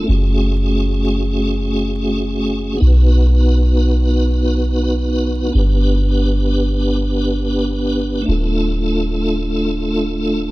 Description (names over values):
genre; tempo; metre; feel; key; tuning
trip hop; free time; none; none; F# harmonic minor; A4 = 440 Hz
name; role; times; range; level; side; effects
tonewheel organ; accompaniment; 0.0-10.5 s; A3 to B4; -18 LUFS; equal; overdrive, chorus vibrato, fast rotary speaker, tremolo, tape echo
soft 808-style bass; bass; 0.0-10.5 s; D1 to B1; -16 LUFS; equal; none
room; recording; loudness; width
little or no reverb; dark, warm production, vinyl crackle; -14 LUFS; side -19 dB against mid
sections
0.0-10.5 A section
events
none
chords
0.1 F#madd9; 2.8 B; 5.5 G; 8.3 Dm